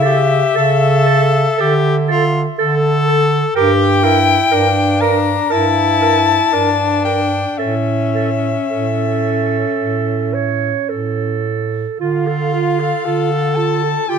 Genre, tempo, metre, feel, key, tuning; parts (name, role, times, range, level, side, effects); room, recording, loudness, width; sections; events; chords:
classical, lyrical piece for single-reed quartet; 53-63 BPM; 4/4; rubato; D minor; A4 = 441 Hz
clear soprano saxophone; melody; 0.0-14.2 s; E5 to Bb5; -18 LUFS; left 8 dB
warm clarinet; second line; 0.0-14.2 s; F4 to C#5; -20 LUFS; right 9 dB
bright tenor saxophone; accompaniment; 0.0-14.2 s; C#4 to A4; -19 LUFS; left 3 dB
mellow bass clarinet; bass; 0.0-14.2 s; G2 to D3; -18 LUFS; right 3 dB
moderate recital hall reverb, RT60 1.5 s; close, detailed microphones; -13 LUFS; side -6 dB against mid
0.0-14.2 A section
0.0 A/C#; 1.6 D5; 3.6 Gm; 7.6 A; 12.0 Dm